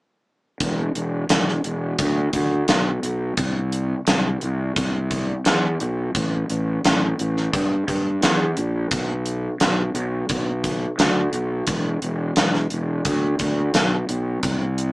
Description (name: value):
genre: classic rock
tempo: 87 BPM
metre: 4/4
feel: straight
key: E minor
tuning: A4 = 439 Hz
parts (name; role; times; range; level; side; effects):
- fuzz fingered electric bass; bass; 0.6-14.9 s; E1 to G2; -22 LUFS; equal; overdrive
- gated 80s drum kit; drums; 0.6-14.9 s; hi-hat, kick drum, snare drum; -21 LUFS; equal; none
room: moderate small room ambience, RT60 0.5 s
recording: band playing live in one room, small speaker sound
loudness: -19 LUFS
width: side -21 dB against mid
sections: 0.6-14.9 A section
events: none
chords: none